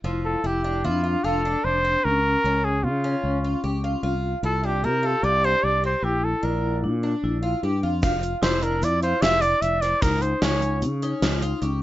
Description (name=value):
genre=progressive instrumental, band music in an uneven meter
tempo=150 BPM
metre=5/4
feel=straight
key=F major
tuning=A4 = 440 Hz
part: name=picked twelve-string acoustic guitar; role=arpeggios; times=0.0-11.8 s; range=F3 to G4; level=-32 LUFS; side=right 2 dB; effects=none
part: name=fretless electric bass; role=bass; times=0.0-11.8 s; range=F1 to Db3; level=-26 LUFS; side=equal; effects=none
part: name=vibraphone with medium mallets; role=second line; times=0.1-11.8 s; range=Db4 to G4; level=-28 LUFS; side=left 3 dB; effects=none
part: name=breathy trumpet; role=melody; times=0.3-10.8 s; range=F4 to E5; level=-23 LUFS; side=right 1 dB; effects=none
part: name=gated 80s drum kit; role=drums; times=8.0-11.7 s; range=hi-hat, kick drum, snare drum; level=-24 LUFS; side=equal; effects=none
part: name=tube shaker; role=percussion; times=8.0-11.6 s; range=none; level=-46 LUFS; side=right 2 dB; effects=none
room=light reverb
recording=rough home demo mix, nothing above 7.8 kHz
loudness=-20 LUFS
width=side -15 dB against mid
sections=0.0-11.8 A section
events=none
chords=0.0 Fmaj7; 2.0 Db; 4.0 Csus4; 6.0 Bb; 8.0 F5; 10.0 N.C.